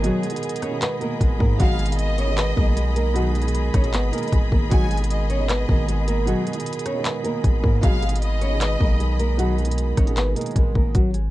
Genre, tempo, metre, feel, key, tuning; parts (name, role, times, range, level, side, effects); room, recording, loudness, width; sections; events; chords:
hip hop, trap; 154 BPM; 4/4; half-time; G# minor; A4 = 440 Hz
nylon-string guitar; melody; 0.0-11.3 s; F#3 to C#5; -27 LUFS; equal; low-pass filter
dark baby grand piano; accompaniment; 0.0-11.0 s; B2 to G#4; -28 LUFS; right 5 dB; low-pass filter
rich symphonic string section; sustained chords; 0.0-10.9 s; G#4 to B5; -34 LUFS; left 4 dB
distorted 808-style bass; bass; 0.0-11.3 s; G#1 to G#2; -22 LUFS; equal; distortion
trap drum kit; drums; 0.0-11.2 s; handclaps, hi-hat, kick drum, rim click; -21 LUFS; equal; vintage 12-bit sampler grit
warm symphonic violin section; second line; 1.6-9.4 s; D#5 to G#5; -31 LUFS; left 2 dB; tape echo
little or no reverb; dark, warm production; -19 LUFS; side -16 dB against mid
0.0-10.9 A section
0.0 G#m